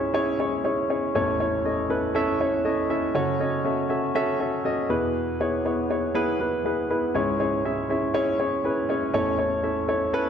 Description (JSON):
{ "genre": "pop", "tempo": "120 BPM", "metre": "4/4", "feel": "straight", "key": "unclear", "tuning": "A4 = 436 Hz", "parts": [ { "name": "warm baby grand piano", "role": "solo", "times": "0.0-10.3 s", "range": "A1 to E5", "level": "-22 LUFS", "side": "equal", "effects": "none" } ], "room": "moderate concert hall reverb, RT60 1.8 s", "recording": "none", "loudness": "-22 LUFS", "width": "side -8 dB against mid", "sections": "0.0-10.3 A section", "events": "none", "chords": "0.0 C#m; 1.1 A; 3.1 F#m; 4.9 E; 7.1 C#m; 9.1 A" }